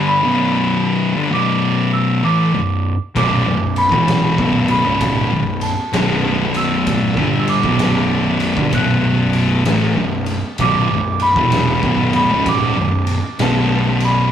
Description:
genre	stoner and doom metal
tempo	64 BPM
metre	4/4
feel	swing 65% on 8ths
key	B minor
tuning	A4 = 439 Hz
part	celesta	melody	0.0-14.3 s	A5 to F#6	-20 LUFS	right 1 dB	none
part	thick fuzz guitar	riff	0.0-14.3 s	B1 to G3	-17 LUFS	left 4 dB	distortion
part	thick fuzz guitar	riff	0.0-14.3 s	B1 to G3	-21 LUFS	right 6 dB	distortion
part	fuzz fingered electric bass	bass	3.2-14.3 s	B0 to A1	-26 LUFS	equal	overdrive
part	oversized low-tuned drum kit	drums	3.2-14.2 s	kick drum, ride cymbal, snare drum	-21 LUFS	right 1 dB	none
room	moderate studio reverb, RT60 0.5 s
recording	rough rehearsal-room recording, tube saturation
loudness	-14 LUFS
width	side -9 dB against mid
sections	0.0-14.3 A section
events	none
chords	0.0 Bm

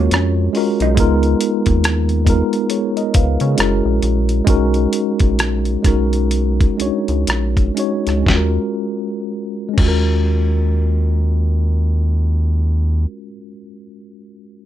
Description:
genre	R&B, neo-soul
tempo	60-70 BPM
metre	4/4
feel	swing 60% on 16ths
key	Eb minor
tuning	A4 = 440 Hz
part	electric guitar through a small old amp	second line	0.0-1.0 s	Db4 to Eb4	-24 LUFS	right 6 dB	none
part	mellow tine electric piano	accompaniment	0.0-14.7 s	Ab3 to F5	-19 LUFS	left 1 dB	medium stereo tremolo
part	rubbery square bass	bass	0.0-13.1 s	Gb1 to Db3	-16 LUFS	equal	none
part	dusty soul sampler-style drum kit	drums	0.1-10.1 s	crash cymbal, hi-hat, kick drum, rim click, snare drum	-18 LUFS	equal	none
room	light reverb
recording	none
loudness	-14 LUFS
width	side -11 dB against mid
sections	0.0-8.3 A section; 8.3-12.3 B section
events	slowing down 1.0-8.3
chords	0.0 Ebm11 (rootless); 1.0 Db13; 3.6 Gb7; 4.5 Bmaj13; 8.3 Ebm11

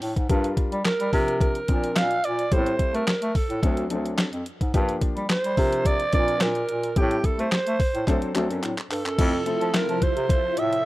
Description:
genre	early-eighties boogie funk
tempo	108 BPM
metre	4/4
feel	straight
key	unclear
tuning	A4 = 442 Hz
part	warm grand piano	accompaniment	0.0-9.9 s	F3 to G5	-29 LUFS	left 2 dB	none
part	clear bass clarinet	bass	0.0-10.8 s	D2 to A3	-27 LUFS	equal	none
part	crisp 8-bit digital drum machine	drums	0.0-10.8 s	crash cymbal, handclaps, hi-hat, kick drum, snare drum	-24 LUFS	equal	overdrive
part	breathy alto saxophone	melody	0.9-10.9 s	G4 to F5	-26 LUFS	right 2 dB	none
part	phased string machine	sustained chords	9.2-10.9 s	C3 to A4	-31 LUFS	equal	ensemble chorus, phaser
room	small room ambience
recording	rough home demo mix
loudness	-21 LUFS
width	side -17 dB against mid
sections	0.0-9.2 A section; 9.2-10.9 B section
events	grand piano fill 0.0; drum fill 8.1-9.2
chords	0.3 Gm7; 1.1 C9sus4; 2.5 Am7; 3.6 D7; 4.7 Gm7; 5.6 C9sus4; 7.0 Am7; 8.1 D7; 9.2 Fmaj7

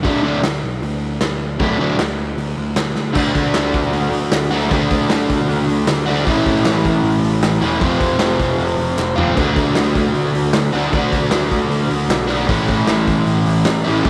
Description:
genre	garage rock duo or trio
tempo	154 BPM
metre	4/4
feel	straight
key	unclear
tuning	A4 = 435 Hz
part	overdriven semi-hollow guitar	riff	0.0-14.1 s	A2 to F#4	-19 LUFS	equal	none
part	fuzz picked electric bass	bass	0.0-14.1 s	E1 to D2	-24 LUFS	equal	overdrive
part	raw garage drum kit	drums	0.0-14.1 s	crash cymbal, hi-hat, kick drum, snare drum, toms	-23 LUFS	equal	none
part	group handclap	percussion	0.5-13.8 s	none	-37 LUFS	equal	none
room	light reverb, small room reverb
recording	none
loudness	-17 LUFS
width	mono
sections	0.0-3.2 A section; 3.2-14.1 B section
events	drum fill 3.0, 9.0-9.4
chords	0.0 D; 6.3 A; 7.8 F; 9.4 D; 12.5 A

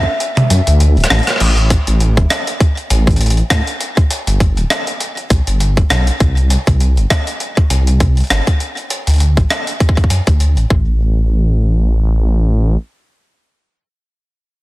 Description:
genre	IDM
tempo	100 BPM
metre	4/4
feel	swing 56% on 16ths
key	unclear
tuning	A4 = 441 Hz
part	warbly lo-fi synth keys	melody	0.0-1.1 s	E5	-25 LUFS	right 1 dB	chorus, tape echo
part	electronic kick drum	drums	0.0-10.8 s	none	-13 LUFS	equal	overdrive
part	jungle sampler-style drum kit	drums	0.2-10.7 s	crash cymbal, hi-hat, rim click, toms	-18 LUFS	equal	overdrive
part	dark detuned saw bass	bass	0.5-12.8 s	D1 to A2	-12 LUFS	equal	none
room	digital ambience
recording	dense, heavily limited modern master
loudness	-11 LUFS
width	side -19 dB against mid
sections	0.0-1.4 A section; 1.4-11.0 B section; 11.0-13.4 C section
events	kick drops out 0.2-1.4; filter sweep on detuned saw bass 1.4-11.0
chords	0.0 Dsus2; 1.4 A5; 3.8 G; 6.2 C5; 8.6 N.C.

